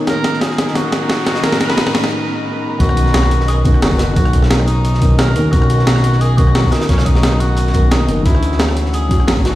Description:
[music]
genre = liquid drum and bass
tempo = 176 BPM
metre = 4/4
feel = straight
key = B major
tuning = A4 = 440 Hz
[part]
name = felt-muted upright piano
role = accompaniment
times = 0.0-9.6 s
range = D#3 to A#5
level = -20 LUFS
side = left 2 dB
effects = vintage 12-bit sampler grit, low-pass filter
[part]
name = airy breathy pad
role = sustained chords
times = 0.0-9.6 s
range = B3 to E6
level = -27 LUFS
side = right 1 dB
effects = chorus
[part]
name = riser and impact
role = sound effects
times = 0.0-4.2 s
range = none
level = -28 LUFS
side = equal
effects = none
[part]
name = clear tenor saxophone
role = melody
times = 0.1-9.6 s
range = C#4 to B4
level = -21 LUFS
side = left 1 dB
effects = dub echo
[part]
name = breakbeat sampler-style drum kit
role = drums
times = 0.1-9.5 s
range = hi-hat, rim click, snare drum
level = -20 LUFS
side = equal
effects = none
[part]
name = crunchy breakbeat drum kit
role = drums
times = 0.1-9.5 s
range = hi-hat, snare drum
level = -27 LUFS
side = equal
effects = high-pass filter on hats, high-pass filter on snare, high-pass filter on room
[part]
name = electronic kick drum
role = drums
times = 0.1-9.4 s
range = none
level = -14 LUFS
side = equal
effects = high-pass filter on kick
[part]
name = smooth gliding synth bass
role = bass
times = 2.8-9.6 s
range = F#1 to D#2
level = -15 LUFS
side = equal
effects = none
[sound]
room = light reverb, small room reverb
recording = played on a big sound system in a bare room, stone room reverb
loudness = -12 LUFS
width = side -15 dB against mid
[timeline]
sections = 0.0-2.8 A section; 2.8-9.6 B section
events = build-up 0.0-2.8; drum fill 0.0-2.1; riser 0.0-2.1; filter sweep on analog synth pad 0.0-2.8; break 2.1-2.8; drop 2.8-9.6; impact 2.8-4.2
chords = 0.0 Bmaj9; 8.3 Dmaj9

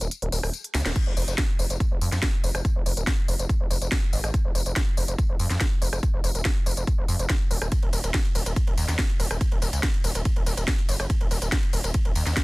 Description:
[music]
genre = driving peak-time techno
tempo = 142 BPM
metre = 4/4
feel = straight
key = F phrygian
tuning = A4 = 440 Hz
[part]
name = gritty driven synth bass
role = bass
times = 0.0-12.3 s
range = Eb1 to F2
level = -26 LUFS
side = equal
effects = distortion, sidechain pumping
[part]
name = techno drum kit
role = drums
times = 0.0-12.4 s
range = crash cymbal, hi-hat, ride cymbal, rim click, snare drum, tambourine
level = -29 LUFS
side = equal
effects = none
[part]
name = electronic kick drum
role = drums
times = 1.0-12.4 s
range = none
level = -24 LUFS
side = equal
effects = none
[sound]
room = little or no reverb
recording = dense, heavily limited modern master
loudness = -22 LUFS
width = side -24 dB against mid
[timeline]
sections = 1.0-12.4 A section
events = kick drops out 0.1-1.0; drum fill 0.7; band accent 0.9; drop 1.0-12.4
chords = none

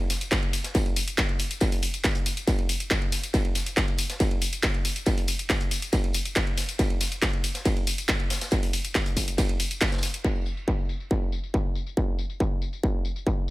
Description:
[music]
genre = techno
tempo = 139 BPM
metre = 4/4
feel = straight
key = none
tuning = none
[part]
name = punchy analog drum machine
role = drums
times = 0.0-13.5 s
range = crash cymbal, handclaps, hi-hat, ride cymbal, tambourine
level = -29 LUFS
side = equal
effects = low-pass filter on snare, sidechain pumping on hats, low-pass filter on hats, sidechain pumping on cymbals, low-pass filter on cymbals, sidechain pumping on perc, low-pass filter on perc, tape echo
[part]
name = crunchy breakbeat drum kit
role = drums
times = 0.1-10.1 s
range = hi-hat, snare drum, tambourine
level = -40 LUFS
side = equal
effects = none
[part]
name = electronic kick drum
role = drums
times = 0.3-13.4 s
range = none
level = -25 LUFS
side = equal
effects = distortion
[sound]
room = small room ambience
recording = echo-heavy mix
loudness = -24 LUFS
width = side -19 dB against mid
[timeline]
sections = 0.0-10.2 A section; 10.2-13.5 B section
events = drop 0.0-10.2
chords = none

